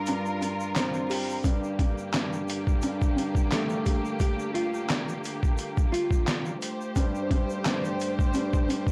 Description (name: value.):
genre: hip hop, boom-bap hip-hop.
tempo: 87 BPM.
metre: 4/4.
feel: swing 56% on 16ths.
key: G minor.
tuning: A4 = 440 Hz.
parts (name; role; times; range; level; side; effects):
dark grand piano; accompaniment; 0.0-8.9 s; G2 to G4; -33 LUFS; equal; high-pass filter, low-pass filter, plate reverb.
warm studio string section; stabs; 0.0-8.9 s; D3 to C5; -36 LUFS; equal; high-pass filter, low-pass filter, plate reverb, analog delay.
trip hop sampler-style drum kit; drums; 0.1-8.9 s; handclaps, hi-hat, kick drum, snare drum; -29 LUFS; equal; none.
tube shaker; percussion; 0.1-8.9 s; none; -52 LUFS; equal; none.
nylon-string guitar; melody; 4.2-6.9 s; F4 to G4; -34 LUFS; equal; high-pass filter, low-pass filter, plate reverb.
room: moderate small room reverb, RT60 0.5 s.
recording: blown-out, overdriven recording, vinyl crackle, overdrive.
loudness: -28 LUFS.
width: mono.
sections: 0.0-8.9 A section.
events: break 0.0-1.4.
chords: 0.0 Gm7; 1.4 Gm9; 6.6 Gsus24.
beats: 0.07 0.76 | 1.45 2.13 2.83 3.52 | 4.20 4.89 5.58 6.27 | 6.96 7.65 8.34.